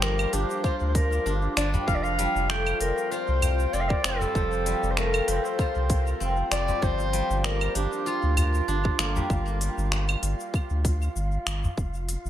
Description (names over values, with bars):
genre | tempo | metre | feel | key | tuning
organic downtempo | 97 BPM | 4/4 | swing 55% on 16ths | G minor | A4 = 440 Hz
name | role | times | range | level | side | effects
warm clarinet | melody | 0.0-9.3 s | F4 to G5 | -29 LUFS | equal | tape echo, shimmer reverb
steel-string zither | arpeggios | 0.0-12.2 s | F3 to F4 | -31 LUFS | left 1 dB | tape echo, shimmer reverb
warm sub bass | bass | 0.0-12.3 s | F1 to D2 | -27 LUFS | equal | tube saturation, sidechain pumping
organic electronic drum kit | drums | 0.0-12.3 s | cabasa, claves, finger snaps, hi-hat | -30 LUFS | equal | overdrive, tape echo
wind-like tuned noise texture | texture | 0.0-12.3 s | F4 to F5 | -37 LUFS | equal | built-in reverb, shimmer reverb
electronic kick drum | drums | 0.6-11.9 s | none | -26 LUFS | equal | none
udu | percussion | 1.7-11.8 s | none | -31 LUFS | left 1 dB | none
room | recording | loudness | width
moderate plate reverb, RT60 1.3 s | echo-heavy mix | -23 LUFS | side -11 dB against mid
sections
0.0-12.3 A section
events
none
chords
0.0 Gm7; 1.9 Fadd9; 6.8 Gm7; 11.8 F5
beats
0.02 0.64 1.26 | 1.88 2.50 3.12 3.73 | 4.35 4.97 5.59 6.21 | 6.83 7.45 8.06 8.68 | 9.30 9.92 10.54 11.16 | 11.78